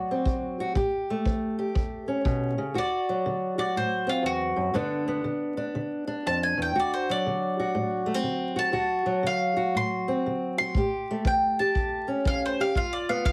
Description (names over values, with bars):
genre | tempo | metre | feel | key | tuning
acoustic country blues, solo or duo | 120 BPM | 4/4 | swing 65% on 8ths | D mixolydian | A4 = 440 Hz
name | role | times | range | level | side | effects
mandolin | melody | 0.0-13.3 s | F4 to C6 | -31 LUFS | equal | none
fingerpicked old ladder-braced acoustic guitar | accompaniment | 0.0-13.3 s | D2 to G4 | -29 LUFS | equal | none
kick drum | drums | 0.3-2.4, 10.7-13.3 s | none | -30 LUFS | equal | none
room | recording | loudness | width
moderate small room ambience, RT60 0.5 s | heavily compressed radio sound, vinyl crackle | -27 LUFS | mono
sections
0.0-2.8 A section; 2.8-13.3 B section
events
mandolin solo 2.8-13.3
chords
0.0 D7; 0.8 A7; 2.8 D7; 4.8 G7; 6.8 D7; 10.8 A7; 12.8 G7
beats
0.26 | 0.76 1.26 1.76 2.26 | 2.76 3.25 3.75 4.25 | 4.75 5.25 5.75 6.25 | 6.75 7.25 7.75 8.25 | 8.75 9.25 9.75 10.26 | 10.76 11.26 11.76 12.26 | 12.76 13.26